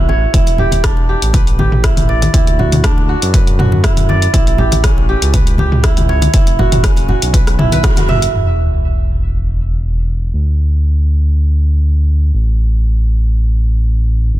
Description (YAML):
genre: afro house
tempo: 120 BPM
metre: 4/4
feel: swing 53% on 16ths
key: unclear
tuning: A4 = 440 Hz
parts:
  - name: kora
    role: arpeggios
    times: 0.0-9.4 s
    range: C#4 to E5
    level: -18 LUFS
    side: right 3 dB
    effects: sidechain pumping, low-pass filter, ping-pong delay
  - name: smooth synth bass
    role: bass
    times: 0.0-14.4 s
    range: E1 to F#2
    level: -14 LUFS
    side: equal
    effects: sidechain pumping
  - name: congas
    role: percussion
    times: 0.1-8.2 s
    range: none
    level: -19 LUFS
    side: left 2 dB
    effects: none
  - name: deep house drum kit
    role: drums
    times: 0.3-8.3 s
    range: hi-hat, rim click, toms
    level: -19 LUFS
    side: equal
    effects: low-pass filter on snare, small room ambience, low-pass filter on hats, low-pass filter on toms
  - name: electronic kick drum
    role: drums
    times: 0.3-7.9 s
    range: none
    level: -13 LUFS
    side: equal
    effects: small room ambience
  - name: sub drop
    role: sound effects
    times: 8.3-10.3 s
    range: none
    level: -18 LUFS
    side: equal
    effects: none
room: little or no reverb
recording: dense, heavily limited modern master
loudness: -11 LUFS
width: side -14 dB against mid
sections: 0.0-8.3 A section; 8.3-14.4 B section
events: band accent 7.8; impact 8.3-10.3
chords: 0.3 Em7; 2.3 D; 4.3 A7; 6.3 F#5; 8.3 N.C.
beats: | 0.34 0.84 1.34 1.84 | 2.34 2.84 3.34 3.84 | 4.34 4.84 5.34 5.84 | 6.34 6.84 7.34 7.84 | 8.34 8.84 9.34 9.84 | 10.34 10.84 11.34 11.84 | 12.34 12.84 13.34 13.84 | 14.34